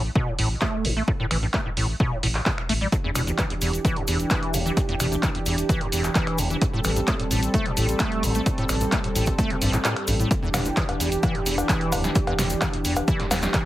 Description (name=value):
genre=acid house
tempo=130 BPM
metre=4/4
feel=straight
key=E minor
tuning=A4 = 440 Hz
part: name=acid bass, square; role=riff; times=0.0-13.7 s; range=D2 to A3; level=-27 LUFS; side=equal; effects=overdrive, ensemble chorus, digital delay
part: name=round analog bass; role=bass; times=0.0-13.5 s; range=D1 to A1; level=-27 LUFS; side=equal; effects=tube saturation, sidechain pumping
part: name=electronic kick drum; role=drums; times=0.2-13.6 s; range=none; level=-26 LUFS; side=equal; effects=overdrive
part: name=punchy analog drum machine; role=drums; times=0.4-13.6 s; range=cowbell, finger snaps, handclaps, hi-hat, snare drum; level=-27 LUFS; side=equal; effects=none
part: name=warm analog pad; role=sustained chords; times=2.9-13.7 s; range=E3 to A4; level=-28 LUFS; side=right 1 dB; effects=chorus, sidechain pumping
part: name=cabasa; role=percussion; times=2.9-13.6 s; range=none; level=-34 LUFS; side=left 4 dB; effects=none
room=light reverb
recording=heavily compressed radio sound, multiband compression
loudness=-21 LUFS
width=side -15 dB against mid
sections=0.0-10.3 A section; 10.3-13.7 B section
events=kick drops out 9.8-10.3; band accent 9.8; drop 10.3-13.7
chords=0.0 N.C.; 2.9 Em7; 6.6 Am7; 10.3 Em7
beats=0.15 0.62 | 1.08 1.54 2.00 2.46 | 2.92 3.39 3.85 4.31 | 4.77 5.23 5.69 6.16 | 6.62 7.08 7.54 8.00 | 8.46 8.92 9.39 9.85 | 10.31 10.77 11.23 11.69 | 12.15 12.62 13.08 13.54